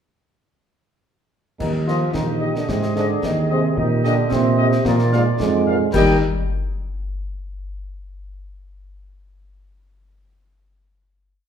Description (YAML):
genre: military-style march for wind band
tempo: 111 BPM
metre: 2/4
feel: straight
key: Eb major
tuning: A4 = 443 Hz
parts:
  - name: mellow euphonium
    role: second line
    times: 1.6-6.2 s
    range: Ab2 to G3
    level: -24 LUFS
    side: right 3 dB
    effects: none
  - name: warm woodwind section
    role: second line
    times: 1.6-6.2 s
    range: Eb4 to Eb5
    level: -29 LUFS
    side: left 1 dB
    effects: none
  - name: dark trombone section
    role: sustained chords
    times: 1.6-6.2 s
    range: G3 to F4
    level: -24 LUFS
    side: right 2 dB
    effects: none
  - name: mellow tuba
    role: bass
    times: 1.6-6.2 s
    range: Bb1 to Bb2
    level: -20 LUFS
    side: right 2 dB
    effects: none
  - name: clash cymbals, concert bass drum and concert snare drum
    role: drums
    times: 1.6-6.2 s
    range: none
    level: -28 LUFS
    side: left 2 dB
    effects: none
  - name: warm trumpet section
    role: melody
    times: 1.9-6.2 s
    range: Eb5 to G5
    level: -29 LUFS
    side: left 3 dB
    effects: none
  - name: warm French horn section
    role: accompaniment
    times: 1.9-6.2 s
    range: Eb4 to Eb5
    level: -26 LUFS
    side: left 5 dB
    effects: none
room: wet recital hall reverb, RT60 1.3 s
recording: recorded in a church or concert hall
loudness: -17 LUFS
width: side -8 dB against mid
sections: 1.6-5.9 A section; 5.9-7.0 final chord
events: none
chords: 1.6 Eb; 2.7 Ab; 3.8 Eb/Bb; 4.9 Bb7; 5.9 Eb